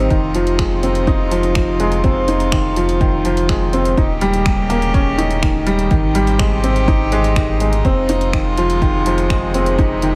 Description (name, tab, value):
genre	piano and strings electronica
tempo	124 BPM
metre	4/4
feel	straight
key	F minor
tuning	A4 = 441 Hz
part	rich string quartet	sustained chords	0.0-10.2 s	C3 to G4	-25 LUFS	equal	sidechain pumping
part	felt-muted upright piano	riff	0.0-10.2 s	Eb3 to Eb4	-20 LUFS	equal	delay
part	warm sub bass	bass	0.0-10.2 s	Eb1 to Ab1	-22 LUFS	equal	sidechain pumping
part	deep house drum kit	drums	0.1-10.1 s	finger snaps, hi-hat	-30 LUFS	equal	small room ambience
part	electronic kick drum	drums	0.1-9.9 s	none	-20 LUFS	equal	small room ambience
room	light reverb, digital ambience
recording	none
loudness	-16 LUFS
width	mono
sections	0.0-10.2 A section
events	none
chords	0.1 Fm7; 4.0 Eb7; 5.9 Abmaj7; 7.8 Fm7